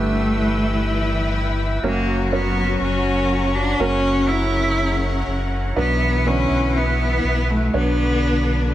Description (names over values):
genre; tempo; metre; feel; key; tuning
pop ballad; 61 BPM; 4/4; straight; B minor; A4 = 437 Hz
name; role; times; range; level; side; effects
rich cello; melody; 0.0-8.7 s; A3 to E4; -22 LUFS; equal; none
rich symphonic cello section; second line; 0.0-8.7 s; C#3 to F#4; -26 LUFS; left 3 dB; none
felt-muted upright piano; accompaniment; 0.0-8.7 s; B2 to C#5; -26 LUFS; right 4 dB; none
sweeping resonant pad; sustained chords; 0.0-8.7 s; A#4 to E6; -30 LUFS; equal; chorus, phaser
sub bass with octave; bass; 0.0-8.7 s; F#1 to B1; -22 LUFS; equal; none
room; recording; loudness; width
light reverb, small room ambience; none; -17 LUFS; side -13 dB against mid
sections
0.0-8.7 A section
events
none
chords
0.0 Em/G; 1.8 F#; 5.8 Bm